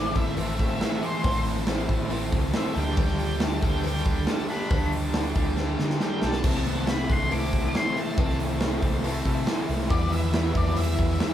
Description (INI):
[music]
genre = classic rock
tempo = 139 BPM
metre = 4/4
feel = straight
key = unclear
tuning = A4 = 441 Hz
[part]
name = octave-fuzz lead guitar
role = melody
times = 0.0-11.3 s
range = C5 to D6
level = -33 LUFS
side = left 2 dB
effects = distortion
[part]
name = biting lead guitar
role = second line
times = 0.0-11.3 s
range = D3 to E4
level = -36 LUFS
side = right 2 dB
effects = none
[part]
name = bright tonewheel organ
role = sustained chords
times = 0.0-11.3 s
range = B3 to D5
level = -41 LUFS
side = left 1 dB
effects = none
[part]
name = overdriven electric guitar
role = riff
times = 0.0-11.3 s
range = A2 to A4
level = -33 LUFS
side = equal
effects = none
[part]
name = raw garage guitar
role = riff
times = 0.0-11.3 s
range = A2 to C5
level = -31 LUFS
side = equal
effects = overdrive, tremolo
[part]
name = hollow-body short-scale picked electric bass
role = bass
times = 0.0-11.2 s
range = A1 to D3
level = -28 LUFS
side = equal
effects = none
[part]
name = big rock drum kit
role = drums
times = 0.1-11.3 s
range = crash cymbal, hi-hat, kick drum, snare drum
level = -27 LUFS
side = equal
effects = none
[part]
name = cowbell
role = percussion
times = 0.4-11.3 s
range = none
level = -43 LUFS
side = left 7 dB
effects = none
[sound]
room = light reverb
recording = band playing live in one room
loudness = -23 LUFS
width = side -11 dB against mid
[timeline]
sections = 0.0-11.3 A section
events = drum fill 5.6-6.4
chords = 0.0 Am; 2.8 Dsus4; 6.4 Am/C; 9.9 Em